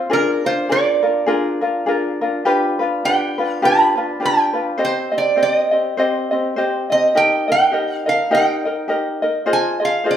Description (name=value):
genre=hawaiian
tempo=102 BPM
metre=4/4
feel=swing 58% on 8ths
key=Eb major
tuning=A4 = 440 Hz
part: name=lap resonator guitar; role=melody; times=0.0-10.2 s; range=Bb4 to B5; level=-17 LUFS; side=right 3 dB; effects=none
part: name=ukulele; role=accompaniment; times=0.0-10.2 s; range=C4 to Eb5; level=-18 LUFS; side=left 1 dB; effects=none
room=wet large studio reverb, RT60 1.0 s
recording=band playing live in one room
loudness=-15 LUFS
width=side -9 dB against mid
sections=0.0-10.2 A section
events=none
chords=0.1 Bb7; 2.5 G7; 4.8 Cm; 7.1 Eb; 9.5 Ab6